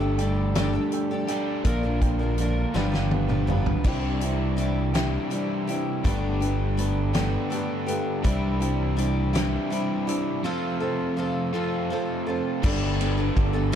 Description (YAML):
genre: folk rock and heartland rock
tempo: 55 BPM (dotted quarters)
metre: 6/8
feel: straight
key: unclear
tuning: A4 = 440 Hz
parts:
  - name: dark upright piano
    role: accompaniment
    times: 0.0-12.6 s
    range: E4 to A5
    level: -36 LUFS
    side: right 6 dB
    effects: none
  - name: picked twelve-string acoustic guitar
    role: accompaniment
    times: 0.0-13.8 s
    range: G2 to B4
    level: -29 LUFS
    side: left 3 dB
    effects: none
  - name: overdriven electric guitar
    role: riff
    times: 0.0-13.8 s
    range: F2 to G4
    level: -29 LUFS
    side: right 2 dB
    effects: none
  - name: modern bright fingered electric bass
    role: bass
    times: 0.0-13.8 s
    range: G1 to C2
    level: -26 LUFS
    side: equal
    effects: none
  - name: loose indie drum kit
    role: drums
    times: 0.2-13.8 s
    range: crash cymbal, hi-hat, kick drum, ride cymbal, snare drum, toms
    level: -27 LUFS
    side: equal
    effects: none
room: light reverb, studio reverb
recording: dark, warm production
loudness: -23 LUFS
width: side -9 dB against mid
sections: 0.0-3.9 A section; 3.9-12.6 B section; 12.6-13.8 C section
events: drum fill 2.8-3.9; upright piano fill 7.1-8.2, 11.5-12.6; break 10.4-12.6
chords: 0.0 Gsus2; 1.7 Bb; 2.8 G7; 3.9 Cadd9; 6.0 Gadd9; 8.2 Cadd9; 10.4 F; 12.6 Gadd9